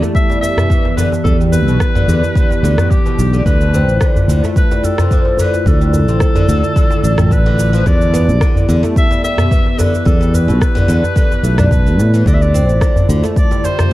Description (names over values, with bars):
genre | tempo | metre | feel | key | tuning
organic downtempo | 109 BPM | 4/4 | swing 54% on 16ths | unclear | A4 = 441 Hz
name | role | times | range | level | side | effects
warbly tape-like pad | sustained chords | 0.0-13.9 s | D3 to G4 | -22 LUFS | left 1 dB | chorus, built-in reverb, sidechain pumping
oud | arpeggios | 0.0-13.9 s | A2 to D4 | -20 LUFS | equal | low-pass filter, dub echo
electronic shaker and rim click | drums | 0.0-13.9 s | none | -27 LUFS | right 1 dB | dub echo
djembe | percussion | 0.0-13.9 s | none | -19 LUFS | equal | none
electronic kick drum | drums | 0.1-13.5 s | none | -14 LUFS | equal | overdrive
bright clarinet | melody | 0.2-13.9 s | G4 to E5 | -22 LUFS | left 1 dB | dub echo
sustaining fretless electric bass | bass | 1.2-13.2 s | A1 to A2 | -13 LUFS | equal | sidechain pumping
room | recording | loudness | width
little or no reverb | echo-heavy mix | -10 LUFS | side -16 dB against mid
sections
0.0-13.9 A section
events
none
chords
0.0 Em7; 3.5 Dm; 7.9 Em7; 12.3 Dm